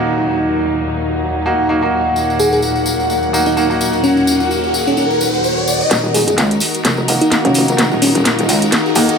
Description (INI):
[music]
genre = bass house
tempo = 128 BPM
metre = 4/4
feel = swing 56% on 16ths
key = Eb minor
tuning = A4 = 443 Hz
[part]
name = rich symphonic string section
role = sustained chords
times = 0.0-9.2 s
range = Eb2 to Gb5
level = -21 LUFS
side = left 2 dB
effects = low-pass filter
[part]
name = bright grand piano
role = stabs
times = 0.0-9.2 s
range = Bb3 to Gb4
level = -20 LUFS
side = right 1 dB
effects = low-pass filter, ping-pong delay
[part]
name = downlifter and riser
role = sound effects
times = 0.0-9.2 s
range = none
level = -22 LUFS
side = equal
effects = none
[part]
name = deep dark ambient pad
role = texture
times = 0.0-9.2 s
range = Eb4 to Gb5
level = -20 LUFS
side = equal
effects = chorus, built-in reverb
[part]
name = garage drum kit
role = drums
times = 0.2-9.2 s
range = hi-hat, snare drum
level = -17 LUFS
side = equal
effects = low-pass filter on hats, small room ambience, low-pass filter on snare, low-pass filter on cymbals, low-pass filter on toms
[part]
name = tambourine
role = percussion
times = 2.2-9.2 s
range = none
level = -24 LUFS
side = left 2 dB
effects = none
[part]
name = bell-like FM electric piano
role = melody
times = 2.4-8.2 s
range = Db4 to Ab4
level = -18 LUFS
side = equal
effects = chorus, cassette tape, ping-pong delay
[part]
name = metallic wobble bass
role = bass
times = 5.9-9.1 s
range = Eb1 to Eb2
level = -17 LUFS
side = equal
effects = distortion, chorus, overdrive, high-pass filter
[sound]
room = moderate lush hall reverb, RT60 2.0 s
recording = none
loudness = -12 LUFS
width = side -6 dB against mid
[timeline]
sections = 0.0-5.9 A section; 5.9-9.2 B section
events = filter sweep on string section 0.0-5.9; riser 3.1-5.9, 5.9-9.2; build-up 5.9-9.2; drum fill 5.9-9.2; filter sweep on grand piano 5.9-9.2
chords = 0.0 Ebm